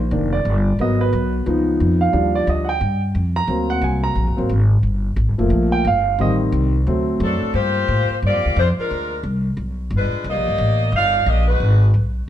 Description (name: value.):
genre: jazz, big band swing.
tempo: 178 BPM.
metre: 4/4.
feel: swing 63% on 8ths.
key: G minor.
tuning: A4 = 440 Hz.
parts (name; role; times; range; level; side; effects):
upright bass; bass; 0.0-12.3 s; D1 to A2; -19 LUFS; equal; none.
warm baby grand piano; accompaniment; 0.1-7.5 s; Eb3 to Bb5; -19 LUFS; right 1 dB; none.
warm saxophone section; melody; 7.2-11.9 s; F#3 to F5; -20 LUFS; left 1 dB; none.
room: moderate large studio reverb, RT60 1.3 s.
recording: dark, warm production.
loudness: -16 LUFS.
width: side -11 dB against mid.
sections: 0.0-7.5 A section; 7.5-12.3 B section.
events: grand piano solo 0.0-7.5.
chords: 0.0 Cm9 (rootless); 0.8 Abm7; 1.5 C#9; 2.1 Ebmaj9; 3.5 Daug7; 4.8 Gm7; 6.2 Am7b5; 6.9 D7; 7.5 Gm7; 8.9 Dm7b5; 9.6 G7b9; 10.3 Cm9 (rootless); 11.6 Abm7.